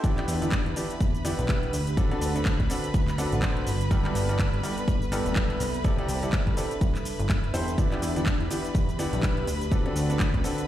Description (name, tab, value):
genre	piano house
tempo	124 BPM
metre	4/4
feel	swing 58% on 16ths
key	E minor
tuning	A4 = 440 Hz
part	rich chamber violin section	sustained chords	0.0-10.7 s	B4 to B5	-36 LUFS	right 1 dB	sidechain pumping
part	clear upright piano	riff	0.0-10.6 s	G2 to D5	-30 LUFS	equal	sidechain pumping, ping-pong delay
part	electronic kick drum	drums	0.0-10.4 s	none	-25 LUFS	equal	none
part	house drum kit	drums	0.0-10.7 s	cabasa, handclaps, hi-hat	-36 LUFS	equal	none
part	warbly tape-like pad	texture	0.0-10.7 s	B3 to E5	-37 LUFS	equal	chorus, built-in reverb, sidechain pumping
part	plucky analog bass	bass	0.3-10.4 s	D1 to E2	-29 LUFS	equal	sidechain pumping
room	light reverb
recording	played on a big sound system in a bare room, large studio reverb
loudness	-24 LUFS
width	side -12 dB against mid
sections	0.0-10.7 A section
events	none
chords	0.0 Em7; 1.7 D7; 3.9 G69; 5.8 C69; 7.8 Em7; 9.5 D7